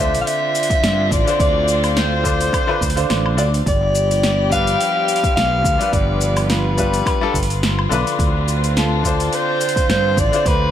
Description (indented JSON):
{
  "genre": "sunset chillout",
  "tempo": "106 BPM",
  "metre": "4/4",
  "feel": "swing 55% on 16ths",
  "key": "D dorian",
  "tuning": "A4 = 437 Hz",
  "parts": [
    { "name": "growling soprano saxophone", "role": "melody", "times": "0.0-10.7 s", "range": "A4 to F5", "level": "-20 LUFS", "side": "equal", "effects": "digital delay" },
    { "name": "bright grand piano", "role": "accompaniment", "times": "0.0-10.7 s", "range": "D3 to D5", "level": "-23 LUFS", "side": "moving between left 5 dB and right 3 dB", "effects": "auto-pan, digital delay" },
    { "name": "warm chamber string section", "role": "sustained chords", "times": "0.0-10.7 s", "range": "D3 to G4", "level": "-25 LUFS", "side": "left 3 dB", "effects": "none" },
    { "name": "fretless electric bass", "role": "bass", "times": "0.0-10.7 s", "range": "G1 to G2", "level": "-20 LUFS", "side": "equal", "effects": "analog chorus" },
    { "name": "deep house drum kit", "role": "drums", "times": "0.1-10.6 s", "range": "hi-hat, shaker, snare drum, woodblock", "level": "-24 LUFS", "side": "equal", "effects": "overdrive, small room ambience" },
    { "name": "electronic kick drum", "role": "drums", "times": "0.7-10.6 s", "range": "none", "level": "-21 LUFS", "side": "equal", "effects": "overdrive, small room ambience" }
  ],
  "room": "light reverb",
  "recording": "none",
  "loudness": "-15 LUFS",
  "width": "side -10 dB against mid",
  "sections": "0.0-10.7 A section",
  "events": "none",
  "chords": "0.0 Dm7; 3.7 G7; 8.2 Dm7",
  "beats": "0.27 0.84 | 1.40 1.97 2.53 3.10 | 3.67 4.23 4.80 5.37 | 5.93 6.50 7.06 7.63 | 8.20 8.76 9.33 9.89 | 10.46"
}